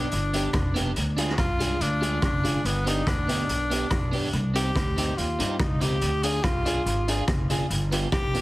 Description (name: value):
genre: ska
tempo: 142 BPM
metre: 4/4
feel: straight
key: unclear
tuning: A4 = 438 Hz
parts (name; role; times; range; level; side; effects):
- clear tenor saxophone; melody; 0.0-8.4 s; B3 to Ab4; -29 LUFS; left 1 dB; dub echo
- electric guitar at the edge of break-up; accompaniment; 0.0-8.4 s; B3 to Ab4; -33 LUFS; right 4 dB; wide subtle chorus, dub echo
- dark upright piano; stabs; 0.0-8.4 s; Ab3 to Ab4; -34 LUFS; left 2 dB; none
- upright bass; bass; 0.0-8.4 s; F1 to G2; -28 LUFS; equal; none
- raw garage drum kit; drums; 0.1-8.4 s; hi-hat, kick drum, rim click; -28 LUFS; equal; none
room: small room reverb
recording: heavily compressed radio sound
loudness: -23 LUFS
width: side -18 dB against mid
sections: 0.0-8.4 A section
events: none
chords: 0.0 G; 1.0 Ddim; 2.6 G; 4.3 Cm; 6.0 Ddim; 7.7 G7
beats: 0.12 0.54 | 0.96 1.38 1.80 2.23 | 2.65 3.07 3.49 3.91 | 4.33 4.75 5.17 5.59 | 6.01 6.44 6.86 7.28 | 7.70 8.12